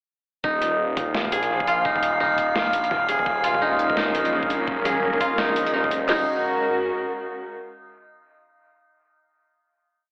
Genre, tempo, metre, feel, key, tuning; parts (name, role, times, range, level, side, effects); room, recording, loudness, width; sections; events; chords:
half-time drum and bass; 170 BPM; 4/4; swing 60% on 16ths, half-time; Eb minor; A4 = 440 Hz
koto; arpeggios; 0.4-6.3 s; Eb4 to Ab4; -26 LUFS; equal; dub echo
phased detuned saw bass; bass; 0.4-6.3 s; Eb1 to Bb1; -31 LUFS; equal; phaser
trap drum kit; drums; 0.4-6.2 s; crash cymbal, kick drum, snare drum; -32 LUFS; equal; small room ambience
metallic inharmonic drone; texture; 1.1-6.1 s; F5; -29 LUFS; equal; chorus, built-in reverb, phaser
boom bap sampler-style drum kit; drums; 0.6-6.0 s; hi-hat, snare drum, toms; -32 LUFS; equal; overdrive, small room ambience, dub echo
muted symphonic cello section; sustained chords; 3.3-7.5 s; Gb3 to Bb4; -28 LUFS; equal; sidechain pumping
wet plate reverb, RT60 1.0 s, digital ambience; echo-heavy mix, telephone sound; -23 LUFS; mono
0.4-6.1 drop; 6.1-7.5 final chord
drop 0.4-6.1
0.4 Ebmadd9; 6.1 Ebm